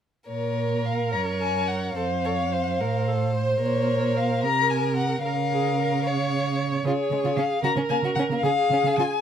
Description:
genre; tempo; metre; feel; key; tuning
quick classical-period movement for string quartet; 74 BPM (dotted quarters); 6/8; rubato; Bb minor; A4 = 445 Hz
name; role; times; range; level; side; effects
rich violin; melody; 0.3-9.2 s; Db5 to Bb5; -26 LUFS; left 8 dB; none
warm violin; second line; 0.3-9.0 s; Ab3 to Db5; -30 LUFS; equal; none
warm viola; accompaniment; 0.3-9.2 s; Ab4 to Db5; -29 LUFS; right 4 dB; none
dark cello; bass; 0.3-9.0 s; F2 to Db3; -27 LUFS; right 4 dB; none
room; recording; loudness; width
light reverb; close, detailed microphones; -22 LUFS; side -8 dB against mid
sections
0.3-9.2 A section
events
none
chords
0.3 Bbm; 2.0 F; 3.6 Bbm; 5.2 Bbm/Db; 6.8 Db; 7.6 Gb/Db (rootless); 8.4 Db

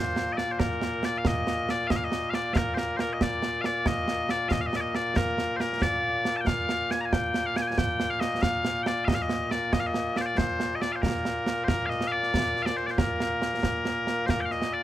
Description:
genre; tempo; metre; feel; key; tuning
scottish traditional, Scottish pipe music; 92 BPM (dotted quarters); 6/8; straight; Bb major; A4 = 441 Hz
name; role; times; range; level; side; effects
loud bright bagpipes; melody; 0.0-14.8 s; Bb2 to Bb5; -27 LUFS; left 1 dB; none
concert snare drum and concert bass drum; drums; 0.2-14.7 s; none; -29 LUFS; right 2 dB; none
room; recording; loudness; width
little or no reverb; none; -25 LUFS; side -13 dB against mid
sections
0.0-1.2 A section; 1.2-11.7 A section; 11.7-14.8 B section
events
none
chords
none

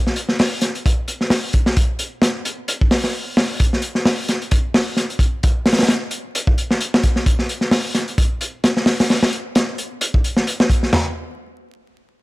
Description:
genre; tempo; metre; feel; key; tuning
breakbeat; 131 BPM; 4/4; swing 56% on 16ths; none; none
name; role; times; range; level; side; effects
crunchy breakbeat drum kit; drums; 0.1-11.0 s; hi-hat, kick drum, snare drum, splash cymbal, toms; -16 LUFS; equal; none
room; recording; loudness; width
little or no reverb; vinyl crackle; -16 LUFS; side -20 dB against mid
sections
0.0-3.6 A section; 3.6-10.9 B section; 10.9-12.2 C section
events
drop 0.0-3.6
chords
none

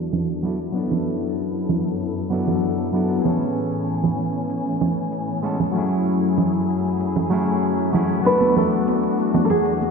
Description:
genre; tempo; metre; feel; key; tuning
sunset chillout; 96 BPM; 4/4; straight; A major; A4 = 440 Hz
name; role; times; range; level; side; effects
clean electric guitar; accompaniment; 0.0-9.9 s; F#3 to A4; -23 LUFS; left 2 dB; auto-pan, ping-pong delay
muted studio string section; sustained chords; 0.0-9.9 s; E2 to G#5; -24 LUFS; left 2 dB; low-pass filter
electronic hi-hat, congas and shaker; drums; 0.1-9.9 s; none; -25 LUFS; right 5 dB; low-pass filter on hats, low-pass filter on perc, low-pass filter on snare
nylon-string guitar; melody; 8.3-9.9 s; G#4 to B4; -20 LUFS; right 1 dB; digital delay
congas; percussion; 8.4-9.9 s; none; -27 LUFS; right 2 dB; none
room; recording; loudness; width
wet lush hall reverb, RT60 1.7 s, small room ambience; bright 1980s-style digital production, low-pass filter; -19 LUFS; side -5 dB against mid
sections
0.0-9.9 A section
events
filter sweep on drum 0.0-9.9; filter sweep on string section 0.0-9.9; filter sweep 0.0-9.9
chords
0.0 E9sus4; 0.8 D69/F#; 3.3 Amaj9; 5.8 F#m9; 8.3 E9sus4

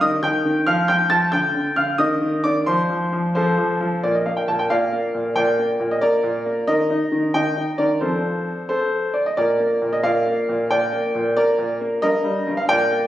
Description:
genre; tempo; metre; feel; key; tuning
classical-period piano sonatina; 90 BPM (dotted quarters); 6/8; straight; Bb major; A4 = 435 Hz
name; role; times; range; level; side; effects
clear grand piano; solo; 0.0-13.1 s; G2 to A6; -18 LUFS; equal; none
room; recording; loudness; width
moderate recital hall reverb, RT60 1.6 s; recorded on a phone in the room, club reverb; -18 LUFS; side -13 dB against mid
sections
0.0-4.0 A section; 4.0-13.1 B section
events
none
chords
0.0 Eb; 0.7 F; 1.3 Dmadd11; 2.0 N.C.; 2.7 F5; 3.4 F; 4.0 N.C.; 4.7 Bb; 6.7 Eb5; 8.0 F; 9.4 N.C.; 10.0 Bb; 12.0 Eb/G

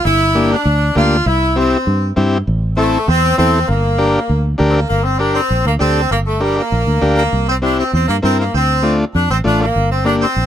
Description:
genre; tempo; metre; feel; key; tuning
latin, cumbia; 198 BPM; 4/4; straight; G dorian; A4 = 439 Hz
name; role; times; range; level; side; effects
clear saxophone section; melody; 0.0-10.5 s; G3 to F4; -16 LUFS; equal; none
fingered electric bass; bass; 0.0-10.5 s; G1 to G2; -16 LUFS; equal; none
overdriven combo organ; accompaniment; 0.3-10.3 s; A3 to Bb4; -17 LUFS; left 2 dB; none
room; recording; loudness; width
little or no reverb; close, detailed microphones; -12 LUFS; side -10 dB against mid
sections
0.0-4.9 A section; 4.9-10.5 B section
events
none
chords
0.0 Gm; 1.3 C; 2.5 Am; 3.7 Gm; 7.3 C; 8.5 Dm7; 9.8 Gm

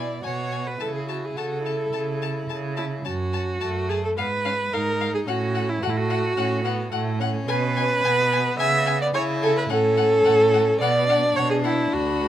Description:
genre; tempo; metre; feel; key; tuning
quick classical-period movement for string quartet; 108 BPM; 4/4; straight; unclear; A4 = 440 Hz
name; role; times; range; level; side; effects
rich violin; melody; 0.0-12.3 s; F5 to B5; -31 LUFS; left 10 dB; none
warm violin; second line; 0.0-12.3 s; A3 to F#4; -30 LUFS; left 4 dB; none
rich viola; accompaniment; 0.0-12.3 s; E4 to E5; -22 LUFS; right 1 dB; none
rich cello; bass; 0.0-12.3 s; D2 to C#3; -27 LUFS; right 4 dB; none
room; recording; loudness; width
light reverb; close, detailed microphones; -20 LUFS; side -11 dB against mid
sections
0.0-12.3 A section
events
none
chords
0.0 G#dim/B (rootless); 0.8 A/C#; 3.1 F#m; 4.2 Fdim/Ab; 5.3 F#m/A; 7.5 G#madd11/B; 8.6 C#m; 9.7 F#m/A; 10.8 Bm

